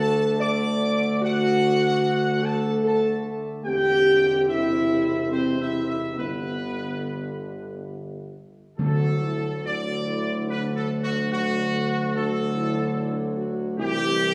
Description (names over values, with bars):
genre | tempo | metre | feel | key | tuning
classical, ceremonial fanfare | 67-74 BPM | 3/4 | straight | D mixolydian | A4 = 440 Hz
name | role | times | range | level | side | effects
clear trumpet section | melody | 0.0-14.3 s | F#4 to D6 | -30 LUFS | equal | none
mellow French horn section | sustained chords | 0.0-14.3 s | B3 to D5 | -27 LUFS | equal | none
mellow trombone section | sustained chords | 0.0-14.3 s | C3 to C4 | -34 LUFS | equal | none
clear tuba | bass | 0.0-14.3 s | E1 to D2 | -30 LUFS | equal | none
timpani | percussion | 8.8-10.0 s | D3 | -28 LUFS | equal | none
room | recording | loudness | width
wet recital hall reverb, RT60 1.8 s | recorded in a church or concert hall, small room ambience | -24 LUFS | mono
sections
0.0-8.8 A section; 8.8-14.3 B section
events
none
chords
0.0 D; 3.7 C/E; 6.2 G; 8.8 D; 13.8 C